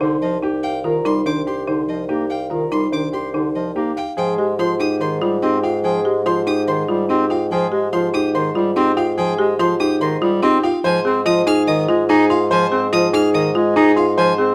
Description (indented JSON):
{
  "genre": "classical, minimalist pattern music",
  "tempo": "144 BPM",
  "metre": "4/4",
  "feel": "straight",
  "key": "C minor, Ab major from 4.2 s",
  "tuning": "A4 = 439 Hz",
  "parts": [
    { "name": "warm grand piano", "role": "melody", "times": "0.0-14.4 s", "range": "G4 to C6", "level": "-25 LUFS", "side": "equal", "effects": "none" },
    { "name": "clear bass clarinet", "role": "accompaniment", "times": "0.0-14.5 s", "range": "D3 to Eb4", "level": "-24 LUFS", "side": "equal", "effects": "none" },
    { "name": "folk marimba with medium mallets", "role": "arpeggios", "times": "0.0-14.5 s", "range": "D4 to Ab4", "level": "-22 LUFS", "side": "equal", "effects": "none" },
    { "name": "warm bassoon", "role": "bass", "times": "0.0-14.5 s", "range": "C2 to Ab2", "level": "-26 LUFS", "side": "equal", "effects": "none" },
    { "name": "warm violin", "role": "arpeggios", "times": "0.2-14.3 s", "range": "Eb5 to F6", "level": "-29 LUFS", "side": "equal", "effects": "none" }
  ],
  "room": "moderate large studio reverb, RT60 0.9 s",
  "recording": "none",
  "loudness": "-18 LUFS",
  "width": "mono",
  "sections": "0.0-4.2 A section; 4.2-14.5 B section",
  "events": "none",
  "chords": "0.0 Cmadd9; 4.2 Abmaj7; 10.8 Fm/Ab",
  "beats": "0.01 0.43 | 0.84 1.26 1.68 2.10 | 2.51 2.93 3.35 3.76 | 4.18 4.59 5.01 5.43 | 5.84 6.26 6.68 7.09 | 7.51 7.93 8.35 8.76 | 9.18 9.60 10.01 10.43 | 10.85 11.26 11.68 12.10 | 12.51 12.93 13.35 13.76 | 14.18"
}